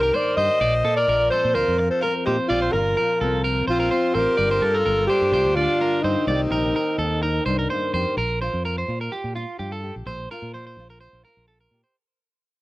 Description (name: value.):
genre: highlife.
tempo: 127 BPM.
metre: 4/4.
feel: straight.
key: Bb major.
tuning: A4 = 439 Hz.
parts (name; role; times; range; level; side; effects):
breathy alto saxophone; melody; 0.0-7.6 s; Eb4 to Eb5; -21 LUFS; equal; tape echo.
raspy tenor saxophone; second line; 0.0-7.7 s; C4 to C5; -33 LUFS; left 4 dB; cassette tape.
fingerpicked steel-string acoustic guitar; accompaniment; 0.0-11.9 s; F2 to G4; -30 LUFS; left 4 dB; cassette tape.
electric guitar at the edge of break-up; arpeggios; 0.0-11.9 s; F4 to D5; -26 LUFS; right 2 dB; cassette tape.
fingered electric bass; bass; 0.0-11.8 s; G1 to Bb2; -27 LUFS; equal; none.
room: moderate booth ambience, RT60 0.2 s.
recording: home recording on cassette.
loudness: -19 LUFS.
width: side -18 dB against mid.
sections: 0.0-8.2 A section; 8.2-12.0 B section.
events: fade-out 8.2-12.0.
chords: 0.0 Cm7; 0.6 Gm7; 6.3 Cm7; 8.2 Bbsus2.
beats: 0.14 | 0.61 1.09 1.56 2.03 | 2.51 2.98 3.45 3.92 | 4.39 4.87 5.34 5.81 | 6.28 6.75 7.23 7.70 | 8.17 8.64 9.12 9.59 | 10.06 10.53 11.01 11.48.